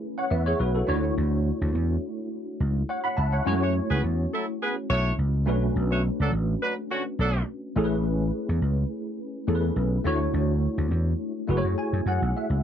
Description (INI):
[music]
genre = pop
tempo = 105 BPM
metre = 4/4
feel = swing 54% on 16ths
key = F# minor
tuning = A4 = 438 Hz
[part]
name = tine electric piano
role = accompaniment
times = 0.0-12.6 s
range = G#3 to B5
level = -28 LUFS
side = left 1 dB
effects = overdrive, fast stereo tremolo, ensemble chorus
[part]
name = vintage slap bass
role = bass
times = 0.3-12.6 s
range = F#1 to F#2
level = -24 LUFS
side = equal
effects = none
[part]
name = dark horn section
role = second line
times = 3.6-7.4 s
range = D3 to C#5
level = -27 LUFS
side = right 1 dB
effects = none
[sound]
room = light reverb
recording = dry, close 1970s-style studio recording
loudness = -23 LUFS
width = side -9 dB against mid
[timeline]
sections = 0.0-12.6 A section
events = tine electric piano fill 11.5-12.6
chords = 0.0 Amaj9; 0.9 Dmaj9; 3.5 F#m7; 5.5 Bm9; 7.8 Amaj9; 10.1 Dmaj9; 11.5 F#m9